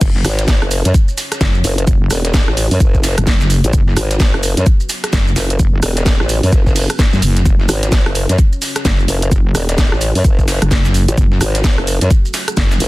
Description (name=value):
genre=bass house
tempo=129 BPM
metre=4/4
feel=swing 61% on 16ths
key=F# minor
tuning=A4 = 440 Hz
part: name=dark analog pad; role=sustained chords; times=0.0-12.9 s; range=C#4 to C#5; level=-32 LUFS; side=left 1 dB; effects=none
part: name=wobble bass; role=bass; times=0.0-12.8 s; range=F#1 to F#2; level=-15 LUFS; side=equal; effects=chorus, overdrive, sidechain pumping
part: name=dusty soul sampler-style drum kit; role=drums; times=0.0-12.8 s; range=hi-hat, shaker, snare drum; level=-27 LUFS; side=equal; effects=high-pass filter on snare, high-pass filter on perc, high-pass filter on hats, high-pass filter on room
part: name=electronic kick drum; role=drums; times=0.0-12.7 s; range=none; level=-13 LUFS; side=equal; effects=high-pass filter on kick
part: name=garage drum kit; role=drums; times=0.0-12.9 s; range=crash cymbal, hi-hat, rim click, snare drum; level=-20 LUFS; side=equal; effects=none
part: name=maracas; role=percussion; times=0.0-12.9 s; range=none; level=-28 LUFS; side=right 5 dB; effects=none
part: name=formant-sweep wobble bass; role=bass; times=0.2-12.9 s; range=E1 to F#2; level=-15 LUFS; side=equal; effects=chorus, sidechain pumping
room=digital ambience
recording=dense, heavily limited modern master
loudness=-11 LUFS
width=side -19 dB against mid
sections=0.0-12.9 A section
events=drop 0.0-12.9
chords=0.0 F#5